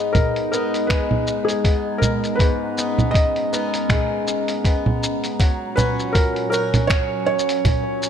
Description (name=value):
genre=folktronica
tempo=80 BPM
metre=4/4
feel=swing 56% on 16ths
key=unclear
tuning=A4 = 440 Hz
part: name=felt-muted upright piano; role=melody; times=0.0-8.1 s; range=G#4 to D#5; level=-24 LUFS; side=equal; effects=ping-pong delay
part: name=warbly tape-like pad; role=sustained chords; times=0.0-8.1 s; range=A#2 to A#5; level=-26 LUFS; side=right 1 dB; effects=chorus, built-in reverb
part: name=picked swing-style acoustic guitar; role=arpeggios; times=0.0-8.1 s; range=G#2 to A#4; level=-25 LUFS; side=left 2 dB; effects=low-pass filter, ping-pong delay
part: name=electronic kick drum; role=drums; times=0.1-7.8 s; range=none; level=-18 LUFS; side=equal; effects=none
part: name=lo-fi sampler-style drum kit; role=drums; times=0.1-8.1 s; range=congas, finger snaps, hi-hat, shaker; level=-22 LUFS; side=right 1 dB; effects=none
room=light reverb, digital ambience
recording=none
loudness=-18 LUFS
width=side -8 dB against mid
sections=0.0-8.1 A section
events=filter sweep on steel-string acoustic guitar 0.0-8.1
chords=0.0 G#madd9; 5.4 F#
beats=0.15 0.90 1.65 | 2.40 3.15 3.90 4.65 | 5.40 6.15 6.90 7.65